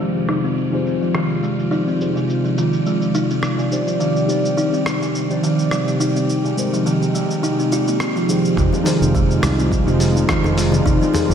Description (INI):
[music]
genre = organic downtempo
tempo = 105 BPM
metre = 4/4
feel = swing 55% on 16ths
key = F dorian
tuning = A4 = 438 Hz
[part]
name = muted felt-like synth keys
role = accompaniment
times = 0.0-11.3 s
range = F3 to D5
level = -24 LUFS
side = left 3 dB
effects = chorus, sidechain pumping, diffuse ambient delay
[part]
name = warm analog pad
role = sustained chords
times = 0.0-11.3 s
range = C3 to D5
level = -23 LUFS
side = right 2 dB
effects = chorus, vintage 12-bit sampler grit, sidechain pumping
[part]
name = buzzing kalimba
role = arpeggios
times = 0.0-11.3 s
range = C3 to F4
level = -19 LUFS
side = equal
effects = low-pass filter, diffuse ambient delay
[part]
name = dusty soul sampler-style drum kit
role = drums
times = 0.0-11.3 s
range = hi-hat, rim click, shaker, toms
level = -27 LUFS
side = equal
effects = low-pass filter on perc, low-pass filter on toms, low-pass filter on snare, low-pass filter on hats, low-pass filter on room
[part]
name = fretless electric bass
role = bass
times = 8.6-11.3 s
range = F1 to C2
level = -18 LUFS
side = equal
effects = none
[part]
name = electronic kick drum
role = drums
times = 8.6-11.0 s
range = none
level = -21 LUFS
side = equal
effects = overdrive
[part]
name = congas and bongos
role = percussion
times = 8.7-11.3 s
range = none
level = -28 LUFS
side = left 3 dB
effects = none
[sound]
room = wet lush hall reverb, RT60 2.2 s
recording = dreamy mix soaked in reverb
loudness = -16 LUFS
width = side -8 dB against mid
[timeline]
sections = 0.0-8.6 A section; 8.6-11.3 B section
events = filter sweep on drum 0.0-8.6; filter sweep on analog synth pad 0.0-8.6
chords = 0.0 Fm7; 4.0 Cmadd9; 6.3 Abmaj7; 8.6 Fm7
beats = 0.00 0.57 1.15 | 1.72 2.29 2.86 3.43 | 4.00 4.57 5.15 5.72 | 6.29 6.86 7.43 8.00 | 8.57 9.15 9.72 10.29 | 10.86